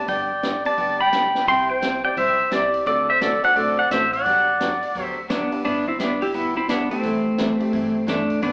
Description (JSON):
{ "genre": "country, western swing", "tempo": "173 BPM", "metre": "4/4", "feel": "swing 64% on 8ths", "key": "G major", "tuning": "A4 = 439 Hz", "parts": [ { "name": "pedal steel guitar", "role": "melody", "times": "0.0-8.5 s", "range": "A3 to C6", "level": "-20 LUFS", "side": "equal", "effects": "none" }, { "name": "breathy clarinet", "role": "second line", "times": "0.0-5.5 s", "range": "G4 to G5", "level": "-23 LUFS", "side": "equal", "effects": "none" }, { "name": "honky-tonk upright piano", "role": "accompaniment", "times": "0.0-8.1 s", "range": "A3 to C5", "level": "-34 LUFS", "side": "equal", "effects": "none" }, { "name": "picked steel-string acoustic guitar", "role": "accompaniment", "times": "0.1-8.5 s", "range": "C3 to B4", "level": "-30 LUFS", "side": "equal", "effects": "none" }, { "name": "upright bass", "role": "bass", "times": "0.1-8.5 s", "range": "G1 to G2", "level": "-43 LUFS", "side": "equal", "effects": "none" }, { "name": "vintage drum kit", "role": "drums", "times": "0.1-8.5 s", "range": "hi-hat, kick drum, snare drum", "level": "-30 LUFS", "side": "equal", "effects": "none" } ], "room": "wet large studio reverb, RT60 1.1 s", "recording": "band playing live in one room, AM radio sound", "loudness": "-18 LUFS", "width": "side -28 dB against mid", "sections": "0.0-5.6 A section; 5.6-8.5 A section", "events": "none", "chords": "0.1 G; 1.5 C; 2.9 D7; 4.3 Gmaj7; 5.6 G6; 7.0 C6" }